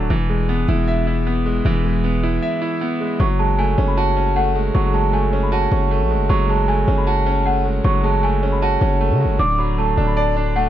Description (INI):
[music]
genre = hip hop, trap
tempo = 155 BPM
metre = 4/4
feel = half-time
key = F# minor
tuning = A4 = 440 Hz
[part]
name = large celesta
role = melody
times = 0.0-0.1, 3.2-10.7 s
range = F#5 to D6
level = -22 LUFS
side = right 2 dB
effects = low-pass filter
[part]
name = clear concert grand piano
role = accompaniment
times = 0.0-10.7 s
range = D3 to E5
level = -20 LUFS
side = equal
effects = low-pass filter
[part]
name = distorted 808-style bass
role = bass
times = 0.0-10.7 s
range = D1 to C#3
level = -19 LUFS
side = equal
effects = distortion
[sound]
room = light reverb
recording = none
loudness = -16 LUFS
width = side -11 dB against mid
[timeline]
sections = 0.0-3.2 A section; 3.2-10.7 B section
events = break 2.4-3.2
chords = 0.1 E; 3.2 F#madd9; 9.4 D